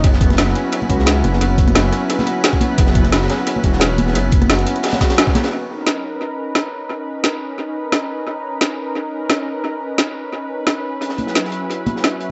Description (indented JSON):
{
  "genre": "liquid drum and bass",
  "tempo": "175 BPM",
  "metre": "4/4",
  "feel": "swing 54% on 16ths",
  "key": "unclear",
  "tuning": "A4 = 439 Hz",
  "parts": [
    { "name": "lush unison pad", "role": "sustained chords", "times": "0.0-12.3 s", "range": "F#3 to B4", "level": "-26 LUFS", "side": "equal", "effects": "chorus, sidechain pumping" },
    { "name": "felt-muted upright piano", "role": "arpeggios", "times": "0.0-5.5 s", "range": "B3 to F#4", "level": "-25 LUFS", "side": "equal", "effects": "low-pass filter, analog delay" },
    { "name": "dark detuned saw bass", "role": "bass", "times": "0.0-4.7 s", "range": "E1 to C#2", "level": "-20 LUFS", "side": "equal", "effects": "none" },
    { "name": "crunchy breakbeat drum kit", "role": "drums", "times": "0.0-5.5, 11.0-12.3 s", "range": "hi-hat, snare drum", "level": "-28 LUFS", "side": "equal", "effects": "high-pass filter on hats, high-pass filter on snare, high-pass filter on room, analog delay" },
    { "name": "drum and bass drum kit", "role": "drums", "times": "0.0-12.1 s", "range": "hi-hat, ride cymbal, rim click, snare drum", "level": "-22 LUFS", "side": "equal", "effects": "overdrive, analog delay" },
    { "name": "electronic kick drum", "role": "drums", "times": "0.0-5.3 s", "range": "none", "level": "-18 LUFS", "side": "equal", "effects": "overdrive" },
    { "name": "congas", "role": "percussion", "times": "0.3-5.4, 11.2-11.9 s", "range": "none", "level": "-26 LUFS", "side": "equal", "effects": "none" }
  ],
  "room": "moderate spring reverb, RT60 1.2 s, small room ambience",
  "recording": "echo-heavy mix, nothing above 7.9 kHz",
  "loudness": "-18 LUFS",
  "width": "mono",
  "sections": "0.0-5.5 A section; 5.5-12.3 B section",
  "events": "drop 0.0-5.5; band accent 5.2",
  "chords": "0.0 F#7sus4; 5.5 Bmaj9; 11.0 F#7sus4",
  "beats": "| 0.04 0.38 0.72 1.07 | 1.41 1.75 2.10 2.44 | 2.78 3.12 3.47 3.81 | 4.15 4.50 4.84 5.18 | 5.52 5.87 6.21 6.55 | 6.90 7.24 7.58 7.92 | 8.27 8.61 8.95 9.30 | 9.64 9.98 10.32 10.67 | 11.01 11.35 11.70 12.04"
}